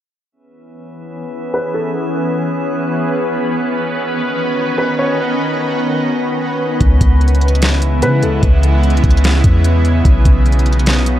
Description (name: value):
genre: hip hop, atmospheric cloud-rap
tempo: 148 BPM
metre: 4/4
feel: half-time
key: C# minor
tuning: A4 = 440 Hz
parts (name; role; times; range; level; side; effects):
- shimmering ambient pad; sustained chords; 0.8-11.2 s; C#3 to B4; -17 LUFS; equal; chorus, built-in reverb, sidechain pumping, low-pass filter
- drifting glass-harmonics texture; texture; 0.9-11.2 s; C#4 to E5; -27 LUFS; equal; chorus, built-in reverb
- felt-muted upright piano; melody; 1.5-1.9, 4.8-5.2, 8.0-8.4 s; A4 to C#5; -20 LUFS; equal; low-pass filter, digital delay
- soft 808-style bass; bass; 6.8-11.2 s; B1 to C#3; -12 LUFS; equal; none
- smooth R&B drum kit; drums; 6.8-11.2 s; hi-hat, kick drum, snare drum; -14 LUFS; equal; none
room: little or no reverb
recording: dark, warm production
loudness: -12 LUFS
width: side -12 dB against mid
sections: 0.3-6.8 A section; 6.8-11.2 B section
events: filter sweep 0.3-6.8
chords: 0.3 C#m7; 3.6 Badd9; 6.8 C#m7; 10.1 Badd9